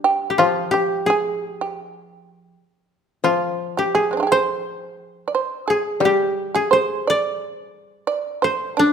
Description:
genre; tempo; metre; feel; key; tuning
japanese traditional, Japanese chamber music; 86 BPM; 4/4; uneven beats, rubato; G in sen; A4 = 440 Hz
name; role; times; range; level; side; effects
koto; melody; 0.0-8.9 s; D4 to D5; -20 LUFS; left 2 dB; none
shamisen; second line; 0.0-8.9 s; Ab3 to D5; -21 LUFS; right 5 dB; none
koto; accompaniment; 0.0-8.1 s; F3 to D4; -25 LUFS; left 5 dB; none
room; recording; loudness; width
moderate recital hall reverb, RT60 1.4 s; none; -18 LUFS; side -7 dB against mid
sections
0.0-8.9 A section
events
none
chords
none

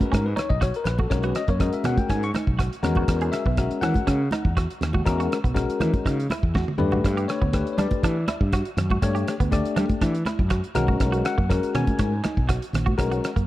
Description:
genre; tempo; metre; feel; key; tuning
electric jazz fusion; 121 BPM; 4/4; straight; unclear; A4 = 440 Hz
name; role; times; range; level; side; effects
bell-like tine electric piano; accompaniment; 0.0-13.3 s; G#3 to C#6; -27 LUFS; left 5 dB; phaser
semi-hollow electric guitar; stabs; 0.0-13.5 s; A#3 to G#4; -32 LUFS; right 5 dB; analog chorus
fretless electric bass; bass; 0.0-13.5 s; A#1 to G3; -25 LUFS; equal; none
damped 70s drum kit; drums; 0.0-13.5 s; hi-hat, kick drum, rim click, snare drum, toms; -25 LUFS; equal; none
congas; percussion; 0.0-13.0 s; none; -31 LUFS; right 1 dB; none
room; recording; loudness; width
light reverb, studio reverb; dark, warm production; -21 LUFS; side -15 dB against mid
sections
0.0-13.5 A section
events
drum fill 6.6-7.0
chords
0.0 Bmaj9; 2.8 Emaj9; 6.8 Gmaj9; 10.8 Bmaj7sus2

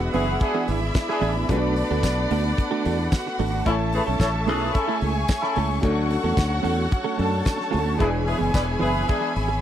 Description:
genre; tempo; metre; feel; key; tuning
disco; 111 BPM; 4/4; straight; D lydian; A4 = 445 Hz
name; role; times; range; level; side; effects
warm studio violin section; second line; 0.0-9.6 s; D4 to A5; -29 LUFS; right 1 dB; none
clean electric guitar; accompaniment; 0.0-9.5 s; E3 to A4; -28 LUFS; right 8 dB; none
clear concert grand piano; accompaniment; 0.0-9.6 s; E3 to B4; -30 LUFS; left 4 dB; none
clear studio string section; sustained chords; 0.0-9.6 s; A3 to C#6; -31 LUFS; left 2 dB; none
modern bright fingered electric bass; bass; 0.0-9.6 s; E1 to F#2; -25 LUFS; equal; none
warm horn section; stabs; 0.1-9.3 s; C#4 to D5; -26 LUFS; left 2 dB; none
damped 70s drum kit; drums; 0.1-9.5 s; hi-hat, kick drum, snare drum; -23 LUFS; equal; none
tambourine; percussion; 1.0-8.7 s; none; -39 LUFS; right 16 dB; none
room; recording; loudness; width
little or no reverb; dry, close 1970s-style studio recording; -20 LUFS; side -10 dB against mid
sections
0.0-9.6 A section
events
none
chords
0.0 E7; 1.5 Bm7; 3.7 A; 5.8 Dmaj7; 8.0 E7

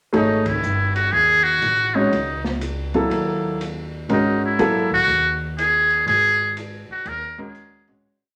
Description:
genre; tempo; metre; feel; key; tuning
modal jazz; 122 BPM; 4/4; swing 66% on 8ths; unclear; A4 = 442 Hz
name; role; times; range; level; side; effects
warm grand piano; accompaniment; 0.1-8.0 s; F#3 to C#5; -22 LUFS; equal; none
upright bass; bass; 0.1-8.0 s; G1 to D#2; -31 LUFS; equal; none
open jazz drum kit; drums; 0.1-8.0 s; hi-hat, kick drum, ride cymbal, snare drum; -36 LUFS; equal; none
trumpet with metal mute; melody; 0.2-7.9 s; D#4 to A#4; -21 LUFS; equal; none
room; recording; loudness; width
moderate large studio reverb, RT60 0.9 s; none; -20 LUFS; mono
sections
0.1-8.0 A section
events
band accent 0.4; fade-out 6.1-8.0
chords
0.1 G#9sus4

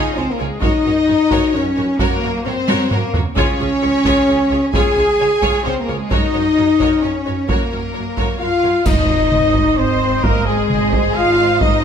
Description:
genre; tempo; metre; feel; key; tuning
cinematic, epic orchestral film score; 131 BPM; 3/4; straight; Ab mixolydian; A4 = 440 Hz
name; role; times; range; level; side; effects
warm symphonic violin section; melody; 0.0-11.8 s; Ab4 to Ab5; -26 LUFS; left 3 dB; none
rich symphonic violin section; second line; 0.0-11.8 s; Ab4 to F5; -25 LUFS; left 2 dB; none
rich symphonic viola section; accompaniment; 0.0-11.8 s; F4 to Eb5; -26 LUFS; right 1 dB; none
mellow French horn section; sustained chords; 0.0-11.8 s; Ab3 to Ab4; -18 LUFS; left 3 dB; none
rich symphonic cello section; bass; 0.0-11.8 s; Ab3 to Ab4; -23 LUFS; right 2 dB; none
rich symphonic double bass section; bass; 0.2-11.8 s; Ab1 to Gb2; -24 LUFS; right 5 dB; none
solo taiko drums; drums; 0.6-11.8 s; none; -21 LUFS; right 1 dB; none
mellow small flute group; second line; 8.4-11.8 s; Ab4 to F5; -24 LUFS; left 3 dB; none
mellow trumpet; stabs; 8.4-11.8 s; Ab4 to F5; -21 LUFS; right 3 dB; none
clash cymbals and concert bass drum; percussion; 8.9-9.7 s; none; -25 LUFS; right 1 dB; none
room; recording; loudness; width
wet recital hall reverb, RT60 1.4 s; none; -14 LUFS; side -8 dB against mid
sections
0.0-8.9 A section; 8.9-11.8 B section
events
drum fill 2.7-3.4; band accent 8.9-9.3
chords
0.0 Db; 0.6 Gb; 3.4 Db; 6.1 Gb; 8.9 Ab

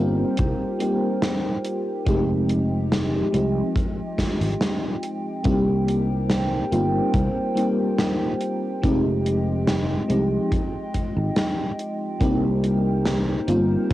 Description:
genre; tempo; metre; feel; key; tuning
vaporwave; 71 BPM; 4/4; straight; F minor; A4 = 444 Hz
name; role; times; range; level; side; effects
FM electric piano with soft pad layer; accompaniment; 0.0-13.9 s; F3 to G4; -24 LUFS; equal; tremolo, analog chorus, cassette tape, analog delay
warbly tape-like pad; sustained chords; 0.0-13.9 s; Ab3 to G5; -30 LUFS; equal; chorus, built-in reverb, vintage 12-bit sampler grit, cassette tape
sustaining fretless electric bass; bass; 0.0-13.9 s; F1 to C2; -24 LUFS; equal; none
gated 80s drum kit; drums; 0.4-13.9 s; hi-hat, snare drum; -24 LUFS; equal; cassette tape
kick drum; drums; 0.4-13.9 s; none; -24 LUFS; equal; cassette tape
room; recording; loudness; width
moderate studio reverb, RT60 0.5 s; home recording on cassette; -20 LUFS; side -15 dB against mid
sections
0.0-13.9 A section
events
none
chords
0.0 Cm7; 2.1 Fm9; 5.5 Cm7; 8.8 Fm9; 12.2 Cm7

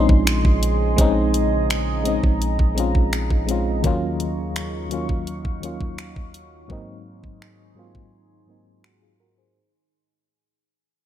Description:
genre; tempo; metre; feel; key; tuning
contemporary R&B; 84 BPM; 4/4; straight; unclear; A4 = 441 Hz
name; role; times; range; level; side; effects
FM electric piano with auto-pan; accompaniment; 0.0-9.7 s; Eb2 to C5; -24 LUFS; left 2 dB; low-pass filter
deep dark ambient pad; sustained chords; 0.0-9.5 s; Db3 to Db6; -28 LUFS; right 2 dB; chorus, built-in reverb, sidechain pumping, low-pass filter
warm 808-style bass; bass; 0.0-3.8 s; Bb1; -22 LUFS; equal; none
trap drum kit; drums; 0.1-9.0 s; finger snaps, hi-hat, kick drum; -21 LUFS; equal; none
room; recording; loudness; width
digital ambience; none; -19 LUFS; side -11 dB against mid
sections
0.0-9.6 A section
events
fade-out 0.0-9.6; filter sweep 0.0-9.6; break 8.1-9.6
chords
0.0 Bbm11; 3.8 Ebm9; 6.7 Ab7

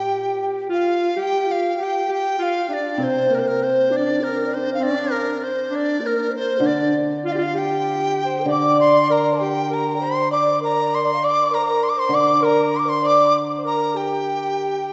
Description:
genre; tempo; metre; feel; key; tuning
chinese traditional, Chinese chamber ensemble; 66 BPM; 2/4; rubato; G yu mode; A4 = 440 Hz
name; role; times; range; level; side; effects
large dizi; melody; 0.0-14.9 s; Bb4 to D6; -24 LUFS; equal; none
breathy alto saxophone; second line; 0.0-14.9 s; Bb3 to D5; -27 LUFS; equal; none
mellow low xiao; second line; 0.0-14.9 s; D4 to F5; -27 LUFS; equal; none
hammered dulcimer; accompaniment; 0.0-14.9 s; Bb2 to D3; -28 LUFS; equal; none
room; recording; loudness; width
wet concert hall reverb, RT60 2.2 s; heard from further back in the room, nothing above 7.8 kHz; -20 LUFS; mono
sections
0.0-1.2 A section; 1.2-14.9 B section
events
none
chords
none

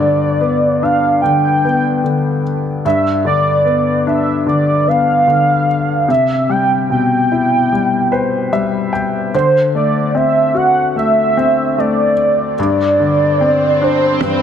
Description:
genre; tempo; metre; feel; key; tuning
pop ballad; 74 BPM; 4/4; straight; unclear; A4 = 441 Hz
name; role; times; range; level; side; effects
warm velvety synth lead; melody; 0.0-14.4 s; B4 to G5; -14 LUFS; right 2 dB; chorus
clear grand piano; accompaniment; 0.0-14.4 s; G2 to G5; -16 LUFS; left 4 dB; none
swell; sound effects; 12.9-14.4 s; none; -22 LUFS; equal; none
toms; drums; 14.2-14.4 s; none; -19 LUFS; right 4 dB; none
room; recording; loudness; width
moderate lush hall reverb, RT60 2.5 s; none; -12 LUFS; side -8 dB against mid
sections
0.0-14.4 A section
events
grand piano fill 7.7-9.3; swell 12.9-14.4; drum fill 14.2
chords
0.0 G; 6.1 Cmaj7; 9.3 D7; 12.6 Gsus4

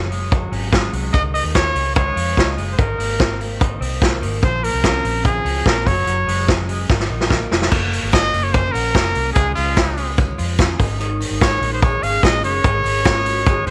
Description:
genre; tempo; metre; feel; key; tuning
jangly indie pop; 146 BPM; 4/4; straight; unclear; A4 = 435 Hz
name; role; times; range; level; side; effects
twelve-string electric guitar; arpeggios; 0.0-13.7 s; Eb3 to Gb4; -30 LUFS; equal; subtle chorus
vintage muted fingered electric bass; bass; 0.0-13.7 s; F1 to F2; -26 LUFS; equal; none
vintage drum kit; drums; 0.1-13.7 s; crash cymbal, hi-hat, kick drum, snare drum; -21 LUFS; equal; none
bright trumpet; melody; 1.1-13.7 s; F4 to F5; -23 LUFS; equal; none
tambourine; percussion; 7.9-13.7 s; none; -44 LUFS; equal; none
vibraphone with medium hard mallets; second line; 11.0-13.7 s; Db4 to Ab4; -30 LUFS; equal; none
room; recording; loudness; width
small room reverb; none; -18 LUFS; mono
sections
0.0-7.7 A section; 7.7-13.7 B section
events
drum fill 6.9-7.7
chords
0.0 Gbsus2; 1.1 Dbadd9; 2.8 Abadd9; 4.4 Bbmadd9; 5.9 Gbsus2; 6.9 Absus2; 7.7 Gb; 9.4 Db; 10.8 Absus4

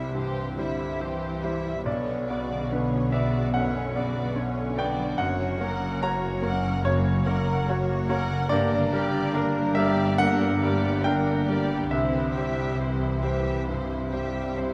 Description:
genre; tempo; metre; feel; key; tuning
cinematic, emotional film score for orchestra; 71 BPM; 4/4; rubato; B harmonic minor; A4 = 438 Hz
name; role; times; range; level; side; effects
muted symphonic violin section; second line; 0.0-14.7 s; C#4 to F#5; -36 LUFS; equal; none
bright grand piano; accompaniment; 0.0-14.7 s; B1 to A#5; -30 LUFS; equal; none
muted symphonic viola section; accompaniment; 0.0-14.7 s; C#3 to A#4; -35 LUFS; equal; none
concert harp; arpeggios; 0.0-14.7 s; F#2 to C#6; -33 LUFS; equal; none
muted symphonic cello section; bass; 0.0-14.7 s; F#2 to E3; -34 LUFS; equal; none
muted symphonic double bass section; bass; 0.0-14.7 s; F#1 to C2; -35 LUFS; equal; none
room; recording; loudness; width
wet scoring stage reverb, RT60 1.7 s; none; -26 LUFS; mono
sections
0.0-14.7 A section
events
none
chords
0.0 C; 1.9 Bmadd9; 5.2 F#; 8.5 Gm; 11.9 C

